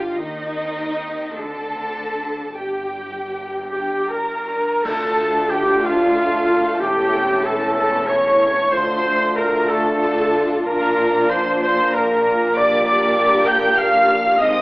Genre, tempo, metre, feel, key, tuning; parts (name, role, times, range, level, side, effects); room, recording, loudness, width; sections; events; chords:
classical, slow romantic movement for symphony orchestra; 49-67 BPM (dotted quarters); 6/8; rubato; G minor, D minor from 4.8 s; A4 = 439 Hz
dark symphonic violin section; melody; 0.0-14.6 s; Eb5 to G6; -27 LUFS; equal
warm symphonic violin section; second line; 0.0-14.6 s; C#4 to Bb4; -28 LUFS; equal
rich symphonic viola section; accompaniment; 0.0-14.6 s; Eb4 to G5; -23 LUFS; equal
concert harp; arpeggios; 0.0-14.6 s; G2 to Bb4; -37 LUFS; left 1 dB
clear symphonic cello section; bass; 0.0-14.6 s; D2 to Eb3; -31 LUFS; equal
warm symphonic double bass section; bass; 0.0-14.6 s; E1 to Eb2; -36 LUFS; equal
cymbal swell, clash cymbals and concert bass drum; percussion; 0.2-6.1 s; -36 LUFS; equal
bright clarinet; second line; 3.7-14.6 s; F4 to G5; -24 LUFS; equal
large flute ensemble; second line; 3.7-14.6 s; F5 to G6; -28 LUFS; equal
mellow cor anglais; second line; 3.7-14.6 s; F4 to G5; -25 LUFS; right 1 dB
mellow trumpet; stabs; 3.7-14.6 s; F4 to G5; -21 LUFS; equal
warm French horn section; sustained chords; 4.8-14.6 s; C4 to G4; -25 LUFS; equal
warm trombone section; sustained chords; 4.8-14.6 s; Bb2 to Bb3; -28 LUFS; equal
wet stone room reverb, RT60 1.0 s; worn, warbling old tape, cassette tape, warbly pitch drift, telephone sound; -16 LUFS; side -22 dB against mid
0.0-4.8 A section; 4.8-14.6 B section
band accent 4.8-5.5
0.2 Cm/Eb; 1.4 D5; 2.5 Gm; 4.8 Dm; 6.8 A7/E; 8.7 Dm; 10.7 Bb; 12.6 Gm/Bb